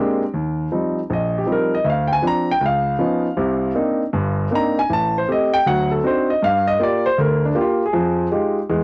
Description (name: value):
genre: solo jazz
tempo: 158 BPM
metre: 4/4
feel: swing 66% on 8ths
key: Eb major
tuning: A4 = 440 Hz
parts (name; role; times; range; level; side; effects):
- warm grand piano; solo; 0.0-8.8 s; G1 to Bb5; -16 LUFS; equal; cassette tape
room: light reverb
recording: home recording on cassette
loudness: -16 LUFS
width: side -29 dB against mid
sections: 0.3-8.8 A section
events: grand piano solo 0.0-8.8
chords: 0.3 Eb69; 1.9 Bb13/D; 2.6 Db9; 3.4 Cm9; 4.9 Am7b5; 5.7 D7b9; 6.4 Gm7; 7.9 Fm9